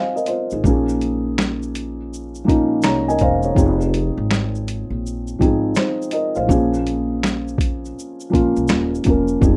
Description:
lo-fi hip hop; 82 BPM; 4/4; swing 65% on 16ths; Bb minor; A4 = 440 Hz
felt-muted upright piano; accompaniment; 0.0-9.6 s; F3 to Bb5; -21 LUFS; equal; low-pass filter
boom bap sampler-style drum kit; drums; 0.2-9.6 s; finger snaps, hi-hat, kick drum, shaker, snare drum; -22 LUFS; equal
upright bass; bass; 0.5-9.6 s; Eb1 to C2; -26 LUFS; equal
moderate small room ambience, RT60 0.5 s; rough home demo mix; -19 LUFS; mono
0.0-9.6 A section
0.0 Fm7; 0.6 Bbm7; 3.6 Fm7; 6.5 Bbm7
| 0.64 1.37 2.10 2.83 | 3.56 4.29 5.03 5.76 | 6.49 7.22 7.95 8.69 | 9.42

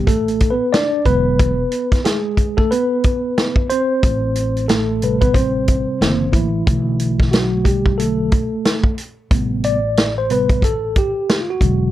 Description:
hip hop, jazz-hop; 91 BPM; 4/4; swing 60% on 16ths; A dorian; A4 = 440 Hz
mellow tine electric piano; accompaniment; 0.0-11.9 s; C3 to D5; -18 LUFS; equal; medium stereo tremolo
upright bass; bass; 0.0-11.9 s; E1 to B1; -22 LUFS; equal
vintage drum kit; drums; 0.1-11.8 s; hi-hat, kick drum, snare drum; -17 LUFS; equal
light reverb; cassette tape; -15 LUFS; side -13 dB against mid
0.0-9.3 A section; 9.3-11.9 B section
tine electric piano solo 0.0-9.3, 9.3-11.9
0.0 Asus2; 1.1 E7; 4.0 Am9; 6.0 F#7alt; 6.7 Bm7; 9.3 Am9
0.08 0.74 | 1.40 2.06 2.72 3.38 | 4.04 4.70 5.36 6.02 | 6.67 7.33 7.99 8.65 | 9.31 9.97 10.63 11.29

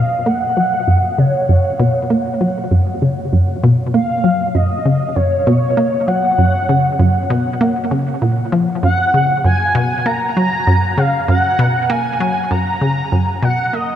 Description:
ambient; 98 BPM; 4/4; straight; F# major; A4 = 440 Hz
expressive portamento lead; melody; 0.0-14.0 s; C#5 to A#5; -18 LUFS; equal; ensemble chorus, tape echo
resonant blip pluck; riff; 0.0-13.9 s; F#2 to A#3; -15 LUFS; equal; chorus, tape echo
wet huge ambient reverb, RT60 8.3 s; cassette tape; -13 LUFS; side -10 dB against mid
0.0-14.0 A section
fade-out 12.1-14.0
0.0 F#
0.26 0.88 | 1.49 2.10 2.71 3.32 | 3.94 4.55 5.16 5.77 | 6.38 7.00 7.61 8.22 | 8.83 9.45 10.06 10.67 | 11.28 11.89 12.51 13.12 | 13.73

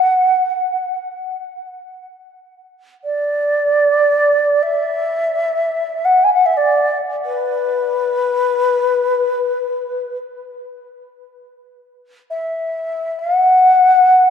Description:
world meditative, free-time meditation music; free time; B minor; A4 = 439 Hz
mellow xiao; solo; 0.0-14.3 s; B4 to G#5; -14 LUFS; left 1 dB; tape echo
wet church reverb, RT60 3.9 s; dark, warm production; -14 LUFS; side -7 dB against mid
0.0-11.5 A section; 11.5-14.3 A section
free time

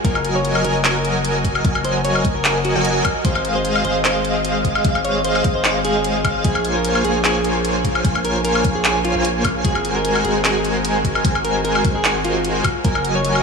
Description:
future bass; 150 BPM; 4/4; swing 54% on 16ths, half-time; Bb minor; A4 = 440 Hz
semi-hollow electric guitar; melody; 0.0-13.4 s; F4 to Db5; -24 LUFS; equal; sidechain pumping, diffuse ambient delay
airy dreamy lead; arpeggios; 0.0-13.4 s; F5 to Ab5; -26 LUFS; right 1 dB; chorus, sidechain pumping
supersaw chords; riff; 0.0-13.4 s; Gb3 to Ab5; -21 LUFS; equal; cassette tape, sidechain pumping, diffuse ambient delay
saturated sub bass; bass; 0.0-13.4 s; Gb1 to Bb1; -25 LUFS; left 1 dB; sidechain pumping
electronic kick drum; drums; 0.0-12.9 s; -20 LUFS; equal; overdrive
pop drum kit; drums; 0.0-13.4 s; handclaps, hi-hat, woodblock; -22 LUFS; left 1 dB; overdrive
wet huge ambient reverb, RT60 6.2 s; dreamy mix soaked in reverb, studio ambience; -16 LUFS; side -5 dB against mid
0.0-13.4 A section
0.0 Gb69; 3.0 Fm7/Ab; 6.4 Bbm7; 9.6 Ab9; 12.6 Gb69
| 0.05 0.45 0.85 1.25 | 1.65 2.05 2.45 2.85 | 3.25 3.65 4.05 4.45 | 4.85 5.25 5.65 6.05 | 6.45 6.85 7.25 7.65 | 8.05 8.45 8.85 9.25 | 9.65 10.05 10.45 10.85 | 11.25 11.65 12.05 12.45 | 12.85 13.25

